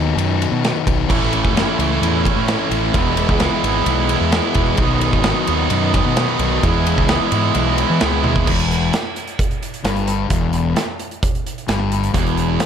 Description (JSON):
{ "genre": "classic rock", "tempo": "130 BPM", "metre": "4/4", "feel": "straight", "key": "E major", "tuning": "A4 = 440 Hz", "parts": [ { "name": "sludgy distorted guitar", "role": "riff", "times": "0.0-12.6 s", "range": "E2 to E4", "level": "-21 LUFS", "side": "left 10 dB", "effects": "overdrive" }, { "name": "fuzz fingered electric bass", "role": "bass", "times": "0.0-12.6 s", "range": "E1 to E3", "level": "-21 LUFS", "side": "right 1 dB", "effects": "overdrive" }, { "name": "big rock drum kit", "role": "drums", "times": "0.2-12.7 s", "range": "crash cymbal, hi-hat, kick drum, ride cymbal, snare drum, toms", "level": "-20 LUFS", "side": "right 1 dB", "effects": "none" }, { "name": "overdriven electric guitar", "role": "riff", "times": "1.1-8.5, 12.1-12.6 s", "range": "E2 to E4", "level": "-20 LUFS", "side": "right 14 dB", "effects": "none" } ], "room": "light reverb, studio ambience", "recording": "none", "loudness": "-15 LUFS", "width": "side -8 dB against mid", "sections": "0.0-8.5 A section; 8.5-12.7 B section", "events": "drum fill 8.2", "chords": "0.0 B; 1.1 A; 2.9 E; 4.8 B; 6.6 E; 8.5 Em" }